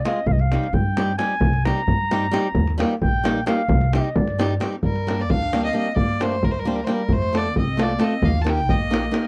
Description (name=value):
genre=balkan folk, Balkan wedding band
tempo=265 BPM (eighths)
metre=5/8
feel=straight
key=C minor, G minor from 4.8 s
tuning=A4 = 439 Hz
part: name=mellow clarinet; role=second line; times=0.0-9.2 s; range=G3 to Bb5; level=-30 LUFS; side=equal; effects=none
part: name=flamenco guitar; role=accompaniment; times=0.0-9.3 s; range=G3 to Bb4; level=-25 LUFS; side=equal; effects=none
part: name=davul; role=percussion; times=0.1-9.3 s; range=none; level=-26 LUFS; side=equal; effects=none
part: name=upright bass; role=bass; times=0.3-9.1 s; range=Bb1 to G2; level=-26 LUFS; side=equal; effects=none
part: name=warm fiddle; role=melody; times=4.8-9.2 s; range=Bb4 to A5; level=-28 LUFS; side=equal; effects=none
room=light reverb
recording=dry, close 1970s-style studio recording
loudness=-21 LUFS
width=mono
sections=0.0-4.8 A section; 4.8-9.3 B section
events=clarinet solo 0.0-4.8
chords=0.3 Cm; 2.6 Eb; 3.7 Cm; 4.8 Gm; 7.1 F; 8.2 Eb